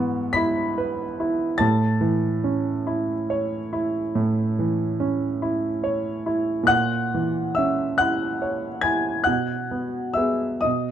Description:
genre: classical, romantic nocturne for solo piano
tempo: 47 BPM (dotted quarters)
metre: 12/8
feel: rubato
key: E major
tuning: A4 = 440 Hz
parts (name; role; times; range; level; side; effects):
- clear concert grand piano; solo; 0.0-10.9 s; G#2 to C#7; -21 LUFS; right 1 dB; none
room: moderate studio reverb, RT60 0.6 s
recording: dark, warm production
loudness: -21 LUFS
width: side -10 dB against mid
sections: 0.0-10.9 A section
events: none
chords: 0.0 E/G#; 1.6 A; 6.7 F#7/A#; 9.3 E/B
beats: 0.36 | 1.61 2.88 4.17 5.43 | 6.70 8.00 9.28 10.65

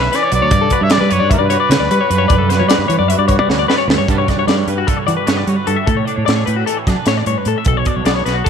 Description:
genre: math rock and midwest emo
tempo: 302 BPM (eighths)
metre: 9/8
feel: straight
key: G lydian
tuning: A4 = 440 Hz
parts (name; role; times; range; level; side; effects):
- clear trumpet; melody; 0.0-3.7 s; B4 to E5; -18 LUFS; right 1 dB; slapback echo
- twangy electric guitar; accompaniment; 0.0-8.5 s; G2 to D5; -22 LUFS; right 13 dB; ensemble chorus
- twelve-string electric guitar; arpeggios; 0.0-8.5 s; F#4 to E5; -18 LUFS; left 11 dB; none
- growling fingered electric bass; bass; 0.0-8.4 s; B1 to G3; -18 LUFS; right 1 dB; overdrive
- crisp fusion drum kit; drums; 0.1-8.5 s; hi-hat, kick drum, snare drum; -18 LUFS; right 1 dB; none
room: light reverb, small room ambience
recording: 1960s-style stereo with parts hard left and right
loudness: -12 LUFS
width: side -7 dB against mid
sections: 0.0-4.1 A section; 4.1-8.5 B section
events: drum fill 3.5-4.1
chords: 0.0 Em7; 0.5 Gmaj7; 4.1 Gmaj9; 7.7 Bm9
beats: 0.12 0.32 | 0.52 0.72 0.92 1.11 1.31 1.51 1.71 1.91 2.10 | 2.30 2.50 2.70 2.89 3.09 3.29 3.49 3.69 3.88 | 4.08 4.28 4.48 4.68 4.88 5.08 5.28 5.47 5.67 | 5.87 6.07 6.27 6.47 6.67 6.87 7.07 7.27 7.46 | 7.67 7.86 8.06 8.26 8.46

